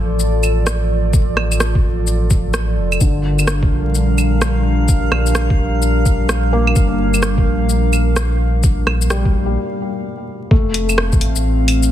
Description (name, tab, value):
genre	future garage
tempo	128 BPM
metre	4/4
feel	swing 63% on 16ths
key	G minor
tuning	A4 = 440 Hz
part	warbly tape-like pad	sustained chords	0.0-11.9 s	F3 to D5	-22 LUFS	equal	chorus, built-in reverb, sidechain pumping
part	warm sub bass	bass	0.0-11.9 s	F1 to Bb1	-17 LUFS	equal	sidechain pumping
part	garage drum kit	drums	0.2-11.9 s	claves, hi-hat, rim click, shaker	-21 LUFS	equal	small room reverb, soft clipping on snare
part	electronic kick drum	drums	1.1-11.2 s	none	-15 LUFS	equal	small room reverb
part	felt-muted upright piano	accompaniment	3.0-11.9 s	D3 to Bb3	-24 LUFS	left 2 dB	sidechain pumping, ping-pong delay
part	drifting glass-harmonics texture	texture	3.7-11.9 s	F5	-28 LUFS	right 1 dB	chorus, built-in reverb
room	light reverb, digital ambience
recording	dense, heavily limited modern master, vinyl crackle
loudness	-14 LUFS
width	side -11 dB against mid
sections	0.0-10.5 A section; 10.5-11.9 B section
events	break 9.6-10.5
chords	0.0 F; 3.0 Gm7; 10.5 F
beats	0.20 0.67 | 1.13 1.60 2.07 2.54 | 3.01 3.48 3.95 4.42 | 4.88 5.35 5.82 6.29 | 6.76 7.23 7.70 8.16 | 8.63 9.10 9.57 10.04 | 10.51 10.98 11.45 11.91